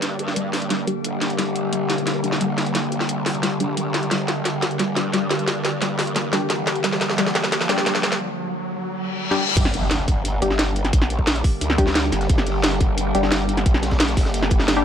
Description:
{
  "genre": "dark technical drum and bass",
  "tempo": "176 BPM",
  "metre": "4/4",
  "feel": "straight",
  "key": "G minor",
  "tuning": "A4 = 439 Hz",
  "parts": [
    { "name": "metallic inharmonic drone", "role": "sustained chords", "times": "0.0-14.8 s", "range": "D3 to G4", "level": "-26 LUFS", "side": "equal", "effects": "chorus, built-in reverb, sidechain pumping" },
    { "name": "filtered dub chord stab", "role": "stabs", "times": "0.0-14.8 s", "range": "G3 to G4", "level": "-26 LUFS", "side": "left 2 dB", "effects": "chorus, digital delay" },
    { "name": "growl bass", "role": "bass", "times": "0.0-14.8 s", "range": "G1 to G2", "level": "-26 LUFS", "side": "equal", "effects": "chorus, overdrive, sidechain pumping, high-pass filter" },
    { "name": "drum and bass drum kit", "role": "drums", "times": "0.0-14.7 s", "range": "crash cymbal, hi-hat, snare drum, toms", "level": "-23 LUFS", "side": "equal", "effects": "high-pass filter on hats, high-pass filter on snare, high-pass filter on toms, high-pass filter on cymbals, high-pass filter on room" },
    { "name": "riser, reverse cymbal and impact", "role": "sound effects", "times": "1.1-10.9 s", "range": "none", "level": "-30 LUFS", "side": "equal", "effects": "none" },
    { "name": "warbly dusty pluck", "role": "arpeggios", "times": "0.2-8.0 s", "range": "G3 to G4", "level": "-28 LUFS", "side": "equal", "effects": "lush chorus, sidechain pumping, digital delay" },
    { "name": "crunchy breakbeat drum kit", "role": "drums", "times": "9.6-14.8 s", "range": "hi-hat, snare drum", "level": "-34 LUFS", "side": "equal", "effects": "none" },
    { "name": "electronic kick drum", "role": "drums", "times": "9.6-14.6 s", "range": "none", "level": "-19 LUFS", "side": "equal", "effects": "none" }
  ],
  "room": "light reverb",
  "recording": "none",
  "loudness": "-19 LUFS",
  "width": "side -8 dB against mid",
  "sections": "0.0-9.6 A section; 9.6-14.8 B section",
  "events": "build-up 0.0-9.6; drum fill 0.0-8.2, 9.3; filter sweep on synth arpeggio sound 0.0-9.6; filter sweep on synth stab 0.0-9.6; riser 1.1-9.6; break 8.2-9.6; reverse cymbal 8.9-9.6; drop 9.6-14.8; impact 9.6-10.9",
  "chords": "0.0 Gm",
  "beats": "| 0.02 0.36 0.70 1.04 | 1.39 1.73 2.07 2.41 | 2.75 3.09 3.43 3.77 | 4.11 4.45 4.79 5.14 | 5.48 5.82 6.16 6.50 | 6.84 7.18 7.52 7.86 | 8.20 8.54 8.89 9.23 | 9.57 9.91 10.25 10.59 | 10.93 11.27 11.61 11.95 | 12.29 12.64 12.98 13.32 | 13.66 14.00 14.34 14.68"
}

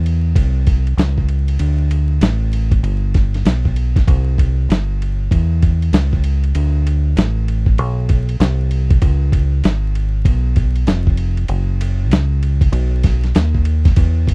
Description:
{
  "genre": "hip hop, jazz-hop",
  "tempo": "97 BPM",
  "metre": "4/4",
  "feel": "swing 63% on 16ths",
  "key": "unclear",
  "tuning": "A4 = 436 Hz",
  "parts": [
    { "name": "deep dub fingered electric bass", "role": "bass", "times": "0.0-14.3 s", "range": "F1 to E2", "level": "-15 LUFS", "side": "equal", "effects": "none" },
    { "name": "dusty soul sampler-style drum kit", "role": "drums", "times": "0.1-14.3 s", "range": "hi-hat, kick drum, ride cymbal, snare drum", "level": "-14 LUFS", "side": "equal", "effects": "none" }
  ],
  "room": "little or no reverb",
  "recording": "dry, close 1970s-style studio recording, vinyl crackle",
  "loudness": "-13 LUFS",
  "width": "side -39 dB against mid",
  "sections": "0.0-14.0 A section",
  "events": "none",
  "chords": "none",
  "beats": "0.36 0.98 | 1.60 2.22 2.84 3.45 | 4.07 4.69 5.31 5.93 | 6.55 7.17 7.78 8.40 | 9.02 9.64 10.26 10.88 | 11.50 12.11 12.73 13.35 | 13.97"
}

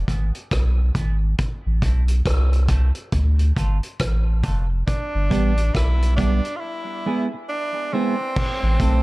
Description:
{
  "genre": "dub reggae",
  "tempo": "69 BPM",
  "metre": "4/4",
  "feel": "swing 61% on 16ths",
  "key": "A minor",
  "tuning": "A4 = 440 Hz",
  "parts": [
    { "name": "warm sub bass", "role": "bass", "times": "0.0-9.0 s", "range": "F1 to D2", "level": "-18 LUFS", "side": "equal", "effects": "none" },
    { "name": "clean electric guitar", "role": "accompaniment", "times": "0.1-9.0 s", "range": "G3 to A4", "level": "-27 LUFS", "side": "right 3 dB", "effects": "wide subtle chorus, high-pass filter, low-pass filter, dub echo" },
    { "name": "vintage drum kit", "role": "drums", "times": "0.1-9.0 s", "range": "crash cymbal, hi-hat, kick drum, rim click", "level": "-24 LUFS", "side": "equal", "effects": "none" },
    { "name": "edgy tenor saxophone", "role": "melody", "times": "4.9-9.0 s", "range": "C4 to F4", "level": "-27 LUFS", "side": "right 1 dB", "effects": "low-pass filter, dub echo" }
  ],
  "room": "little or no reverb",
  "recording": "dark, warm production",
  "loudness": "-19 LUFS",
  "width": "side -21 dB against mid",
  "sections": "0.0-8.4 A section",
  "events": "break 0.0-4.9, 6.6-8.4; filter sweep 0.0-8.4",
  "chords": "0.0 E; 1.4 Am; 3.1 Dm; 4.9 G; 6.6 E; 8.4 Am",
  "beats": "0.52 | 1.39 2.26 3.13 4.00 | 4.88 5.75 6.62 7.49 | 8.36"
}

